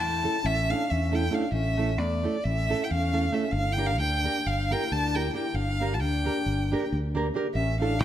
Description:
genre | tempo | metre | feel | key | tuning
balkan folk | 269 BPM (eighths) | 9/8 | straight | unclear | A4 = 441 Hz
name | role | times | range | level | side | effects
rich violin | melody | 0.0-8.0 s | D5 to A5 | -29 LUFS | right 1 dB | none
mellow hollow alto flute | second line | 0.0-8.0 s | A3 to F4 | -32 LUFS | left 5 dB | none
fingered electric bass | bass | 0.0-8.0 s | G1 to E2 | -28 LUFS | equal | none
nylon-string guitar | accompaniment | 0.2-7.9 s | A3 to Bb4 | -31 LUFS | right 4 dB | none
room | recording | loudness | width
moderate recital hall reverb, RT60 1.7 s | none | -24 LUFS | side -11 dB against mid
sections
0.0-8.0 A section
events
none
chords
0.0 A; 3.5 Gm; 7.5 A

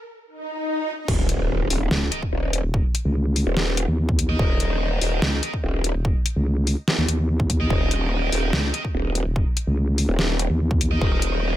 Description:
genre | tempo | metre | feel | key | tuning
heavy wobble dubstep | 145 BPM | 4/4 | half-time | unclear | A4 = 440 Hz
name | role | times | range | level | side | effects
wide unison pluck | melody | 0.0-1.0 s | Bb4 | -55 LUFS | equal | none
swell and impact | sound effects | 0.4-2.7 s | none | -28 LUFS | equal | none
growl bass | bass | 1.1-11.6 s | Eb1 | -22 LUFS | equal | chorus, overdrive
dubstep drum kit | drums | 1.1-11.3 s | crash cymbal, hi-hat, snare drum | -25 LUFS | left 1 dB | none
electronic kick drum | drums | 1.1-11.1 s | none | -23 LUFS | equal | none
vowel-sweep wobble bass | bass | 1.9-11.0 s | Eb1 to Eb2 | -21 LUFS | equal | chorus, overdrive
tight distorted guitar | stabs | 2.1-11.6 s | Eb4 to Eb5 | -30 LUFS | right 2 dB | distortion, dub echo
room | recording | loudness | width
little or no reverb | high-pass filter | -20 LUFS | side -13 dB against mid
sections
0.0-1.1 A section; 1.1-11.6 B section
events
break 0.0-1.1; build-up 0.0-1.1; swell 0.4-1.1; drop 1.1-11.6; impact 1.1-2.7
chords
0.0 N.C.; 1.1 Eb5

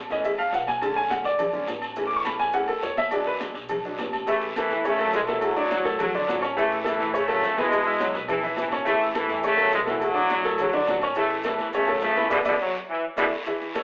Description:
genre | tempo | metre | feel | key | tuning
latin, salsa | 209 BPM | 4/4 | straight | A major | A4 = 440 Hz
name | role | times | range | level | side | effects
upright bass | bass | 0.0-13.3 s | A1 to A2 | -43 LUFS | equal | none
clear baby grand piano | accompaniment | 0.1-13.8 s | D3 to E6 | -26 LUFS | equal | none
congas | percussion | 0.1-13.8 s | none | -39 LUFS | equal | none
cowbell | percussion | 0.1-13.8 s | none | -32 LUFS | equal | none
guiro | percussion | 0.1-13.8 s | none | -39 LUFS | left 1 dB | none
maracas | percussion | 0.1-13.8 s | none | -55 LUFS | right 1 dB | none
agogo bells and timbales | percussion | 0.2-13.8 s | none | -33 LUFS | equal | none
bright trombone section | second line | 4.3-13.3 s | E3 to A3 | -28 LUFS | equal | none
brilliant trombone section | melody | 4.6-13.2 s | A2 to A3 | -24 LUFS | equal | none
room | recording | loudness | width
wet large studio reverb, RT60 1.0 s | band playing live in one room, telephone sound | -21 LUFS | side -28 dB against mid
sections
0.0-4.3 A section; 4.3-13.5 B section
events
grand piano solo 0.0-4.3; band accent 12.3-13.5; drum fill 12.6-13.5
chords
0.0 A; 0.8 Bm7; 2.0 A; 3.1 E7; 4.3 A; 5.4 Bm7; 6.6 A; 10.0 Bm7; 11.2 A; 12.3 E5

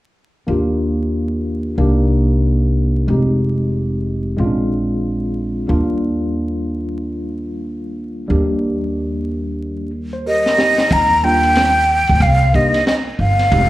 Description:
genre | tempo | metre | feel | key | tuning
hip hop, jazz-hop | 92 BPM | 4/4 | swing 61% on 16ths | Eb major | A4 = 440 Hz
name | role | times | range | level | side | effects
tine electric piano | accompaniment | 0.5-13.7 s | G3 to C5 | -20 LUFS | equal | medium stereo tremolo, plate reverb
upright bass | bass | 0.5-13.7 s | F1 to Eb2 | -19 LUFS | equal | none
breathy mellow silver concert flute | melody | 10.3-13.7 s | Eb5 to Bb5 | -14 LUFS | equal | plate reverb, slapback echo
crunchy breakbeat drum kit | drums | 10.5-13.7 s | hi-hat, kick drum, ride cymbal, snare drum | -21 LUFS | equal | none
room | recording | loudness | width
moderate club reverb, RT60 0.5 s | live gig heard through the venue's PA, club reverb, vinyl crackle | -15 LUFS | side -16 dB against mid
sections
0.5-10.9 A section; 10.9-13.7 B section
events
drum fill 10.3-10.9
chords
0.5 Ebmaj7; 1.8 Cm7; 3.1 Fm7; 4.4 Bb7; 5.7 Ebmaj7; 12.2 Cm7

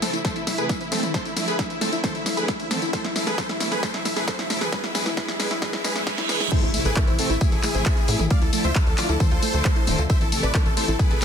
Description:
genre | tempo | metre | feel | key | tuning
uplifting trance | 134 BPM | 4/4 | straight | A harmonic minor | A4 = 439 Hz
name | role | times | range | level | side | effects
big supersaw lead | melody | 0.0-11.2 s | C4 to F5 | -27 LUFS | equal | sidechain pumping, low-pass filter, tape echo
rich chamber string section | sustained chords | 0.0-11.2 s | B2 to E4 | -31 LUFS | left 2 dB | sidechain pumping
analog pluck | arpeggios | 0.0-11.2 s | G#3 to C5 | -31 LUFS | right 2 dB | chorus, sidechain pumping, tape echo
punchy analog drum machine | drums | 0.0-11.2 s | crash cymbal, handclaps, hi-hat, snare drum, tambourine, toms | -27 LUFS | left 1 dB | sidechain pumping on hats, sidechain pumping on toms, sidechain pumping on perc, sidechain pumping on cymbals
riser, reverse cymbal and impact | sound effects | 4.0-8.3 s | none | -33 LUFS | right 2 dB | none
electronic kick drum | drums | 0.2-11.1 s | none | -22 LUFS | equal | overdrive
tight sequencer bass | bass | 6.6-11.2 s | D1 to A2 | -25 LUFS | equal | sidechain pumping
room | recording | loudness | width
light reverb | dense, heavily limited modern master, high-pass filter | -20 LUFS | side -8 dB against mid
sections
0.0-6.5 A section; 6.5-11.2 B section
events
build-up 0.0-6.5; drum fill 0.0-6.5; filter sweep on synth pluck 0.0-6.5; reverse cymbal 5.6-6.5; drop 6.5-11.2; impact 6.5-8.3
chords
0.0 Am; 1.1 Dmadd9; 2.9 Am; 4.7 E; 6.5 Am; 8.3 Dmadd9; 10.1 Am

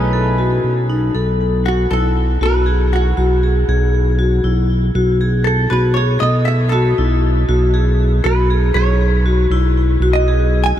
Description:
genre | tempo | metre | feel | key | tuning
progressive instrumental, progressive | 237 BPM (eighths) | 5/8 | straight | B mixolydian | A4 = 440 Hz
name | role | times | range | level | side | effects
mellow trumpet | melody | 0.0-0.8 s | B4 | -27 LUFS | equal | ping-pong delay
archtop guitar, miked and amplified | accompaniment | 0.0-10.8 s | A3 to G#5 | -22 LUFS | right 2 dB | double-tracked left and right
vibraphone with medium hard mallets | arpeggios | 0.0-10.7 s | D#4 to A4 | -19 LUFS | left 3 dB | ping-pong delay
smooth gliding synth bass | bass | 0.0-10.8 s | B1 | -15 LUFS | equal | none
room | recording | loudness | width
light reverb, small room ambience | none | -13 LUFS | side -11 dB against mid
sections
0.0-1.1 A section; 1.1-10.8 B section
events
hollow-body jazz guitar solo 1.1-10.8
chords
0.0 B7; 1.1 B7sus4; 3.7 Eadd9/B; 6.2 B7sus4; 8.8 E69/B; 10.0 B

